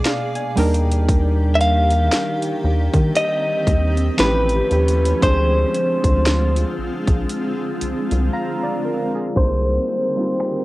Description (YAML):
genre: contemporary R&B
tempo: 58 BPM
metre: 4/4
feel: swing 58% on 16ths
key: unclear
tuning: A4 = 440 Hz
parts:
  - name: muted felt-like synth keys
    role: accompaniment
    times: 0.0-10.6 s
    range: F3 to Bb5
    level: -24 LUFS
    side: right 1 dB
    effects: chorus, cassette tape
  - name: granular cloud pad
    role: sustained chords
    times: 0.0-10.6 s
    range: Cb3 to D5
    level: -26 LUFS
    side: equal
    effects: built-in reverb, cassette tape
  - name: trap drum kit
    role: drums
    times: 0.1-10.6 s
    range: finger snaps, hi-hat, kick drum, snare drum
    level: -20 LUFS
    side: equal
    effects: cassette tape
  - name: rubbery square bass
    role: bass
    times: 0.6-9.8 s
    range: A1 to Eb3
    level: -19 LUFS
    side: equal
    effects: none
  - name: direct-recorded clean electric guitar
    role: melody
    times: 1.6-10.6 s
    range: B4 to F5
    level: -20 LUFS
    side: equal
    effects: cassette tape
room: light reverb, digital ambience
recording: home recording on cassette, low-pass filter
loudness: -16 LUFS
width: side -18 dB against mid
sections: 0.0-9.4 A section; 9.4-10.6 B section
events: synth keys fill 0.0-1.1, 7.8-9.4; drums muted 8.3-9.4; filter sweep 9.4-10.6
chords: 0.0 Bb7b9; 0.6 Ebmaj7; 4.2 A7b13; 5.2 Dm7b5; 9.4 Cm7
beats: 0.05 | 1.09 2.12 3.15 4.19 | 5.22 6.26 7.29 8.33 | 9.36 10.40